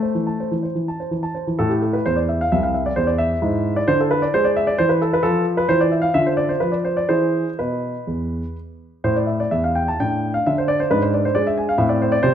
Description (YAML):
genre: classical-period piano sonatina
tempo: 123-134 BPM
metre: 4/4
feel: rubato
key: A minor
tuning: A4 = 440 Hz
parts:
  - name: warm baby grand piano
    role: solo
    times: 0.0-12.3 s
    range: C2 to A5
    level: -17 LUFS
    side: equal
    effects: none
room: moderate recital hall reverb, RT60 1.4 s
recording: dark, warm production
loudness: -17 LUFS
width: side -9 dB against mid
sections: 0.0-1.6 A section; 1.6-12.3 A section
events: none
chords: 0.0 Am; 3.4 E/G#; 5.3 Dm13; 7.1 E; 9.0 A5; 10.0 Amadd11; 10.9 G#dim7(no3); 11.8 Am